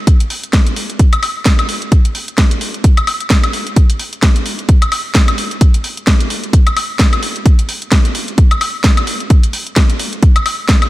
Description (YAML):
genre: house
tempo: 130 BPM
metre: 4/4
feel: swing 57% on 16ths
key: none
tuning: none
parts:
  - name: electronic kick drum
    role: drums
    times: 0.1-10.8 s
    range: none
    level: -10 LUFS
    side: equal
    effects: overdrive
  - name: garage drum kit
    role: drums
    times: 0.1-10.9 s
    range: hi-hat, snare drum, woodblock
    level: -16 LUFS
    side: left 1 dB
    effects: none
room: light reverb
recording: none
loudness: -11 LUFS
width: side -17 dB against mid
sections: 0.0-10.9 A section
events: none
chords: none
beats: 0.07 0.53 | 0.99 1.46 1.92 2.38 | 2.84 3.30 3.77 4.23 | 4.69 5.15 5.61 6.07 | 6.53 7.00 7.46 7.92 | 8.38 8.84 9.30 9.77 | 10.23 10.69